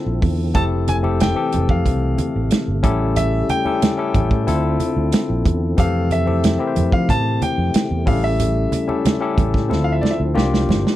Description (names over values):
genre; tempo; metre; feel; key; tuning
lush 1970s-style soul; 92 BPM; 4/4; straight; F major; A4 = 440 Hz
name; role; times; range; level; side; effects
bright grand piano; melody; 0.0-10.2 s; D5 to A5; -25 LUFS; left 1 dB; none
barky tine electric piano; accompaniment; 0.0-11.0 s; E3 to C5; -22 LUFS; left 5 dB; overdrive
percussive tonewheel organ; sustained chords; 0.0-11.0 s; C3 to D4; -29 LUFS; right 2 dB; slow rotary speaker, overdrive, chorus vibrato
fingered electric bass; bass; 0.1-10.8 s; F1 to F3; -20 LUFS; right 1 dB; none
warm soul drum kit; drums; 0.2-11.0 s; hi-hat, kick drum, snare drum; -19 LUFS; right 1 dB; none
congas; percussion; 0.2-10.8 s; none; -26 LUFS; right 4 dB; none
room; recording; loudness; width
little or no reverb; none; -16 LUFS; side -14 dB against mid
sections
0.0-11.0 A section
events
drum fill 9.7-11.0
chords
0.0 Dm9; 0.6 Fmaj7; 2.8 A7; 4.5 Dm9; 5.8 Fmaj7; 8.1 A7; 9.7 Dm9; 10.4 C9sus4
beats
| 0.55 1.20 1.86 2.51 | 3.17 3.82 4.47 5.13 | 5.78 6.43 7.09 7.74 | 8.40 9.05 9.71 10.36